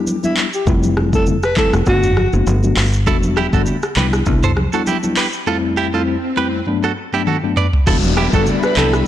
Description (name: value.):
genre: afrobeats.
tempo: 100 BPM.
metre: 4/4.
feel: swing 55% on 16ths.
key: unclear.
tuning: A4 = 440 Hz.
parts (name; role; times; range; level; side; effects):
mellow tine electric piano; accompaniment; 0.0-9.0 s; F2 to F#4; -20 LUFS; left 4 dB; medium stereo tremolo.
afro-pop drum kit; drums; 0.1-9.1 s; crash cymbal, handclaps, hi-hat, kick drum, rim click, shaker, toms; -19 LUFS; equal; vintage 12-bit sampler grit.
congas; percussion; 0.1-8.9 s; none; -26 LUFS; right 1 dB; none.
breathy alto saxophone; melody; 0.2-2.3, 8.3-8.9 s; E4 to B4; -20 LUFS; right 1 dB; tape echo.
fingered electric bass; bass; 0.7-9.0 s; E1 to C2; -17 LUFS; equal; none.
direct-recorded clean electric guitar; riff; 3.1-8.9 s; E4 to D5; -21 LUFS; right 7 dB; tape echo.
swell and downlifter; sound effects; 5.1-9.1 s; none; -26 LUFS; left 2 dB; none.
airy breathy pad; sustained chords; 7.9-9.1 s; G3 to B5; -26 LUFS; left 2 dB; chorus.
room: light reverb, digital ambience.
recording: blown-out, overdriven recording, overdrive.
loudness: -14 LUFS.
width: side -12 dB against mid.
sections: 0.0-7.9 A section; 7.9-9.1 B section.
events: swell 5.1-7.9; drum fill 7.3-7.9.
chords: 0.0 Cmaj7 (rootless); 0.7 Fmaj9; 1.9 Gmaj9; 3.1 Em7; 4.0 Cmaj7; 5.5 Fmaj9; 6.7 Gmaj9; 7.9 Em7.